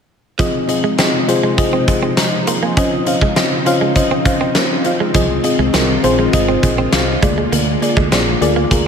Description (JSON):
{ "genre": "1980s-style pop", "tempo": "101 BPM", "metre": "4/4", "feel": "straight", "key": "F minor", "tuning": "A4 = 440 Hz", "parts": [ { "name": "mellow FM electric piano", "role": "accompaniment", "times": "0.4-8.9 s", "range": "Bb3 to C6", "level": "-17 LUFS", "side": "left 2 dB", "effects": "chorus" }, { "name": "string machine, violas", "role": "sustained chords", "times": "0.4-8.9 s", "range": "C3 to F4", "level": "-21 LUFS", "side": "right 1 dB", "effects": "ensemble chorus" }, { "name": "direct-recorded clean electric guitar", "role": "riff", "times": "0.4-8.7 s", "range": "F3 to Db4", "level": "-23 LUFS", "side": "right 7 dB", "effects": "wide subtle chorus, ping-pong delay" }, { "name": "big rock drum kit", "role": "drums", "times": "0.4-8.8 s", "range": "hi-hat, kick drum, snare drum", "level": "-17 LUFS", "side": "equal", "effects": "gated reverb" }, { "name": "mellow fretless electric bass", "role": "bass", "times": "5.1-8.9 s", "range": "Ab1 to D2", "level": "-20 LUFS", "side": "equal", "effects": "analog chorus" } ], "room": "moderate lush hall reverb, RT60 1.8 s, small room ambience", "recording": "none", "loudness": "-13 LUFS", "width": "side -6 dB against mid", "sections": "0.4-8.9 A section", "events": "none", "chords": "0.4 Fm7; 2.8 Dbmaj9; 5.1 Fm7; 7.2 Bb7" }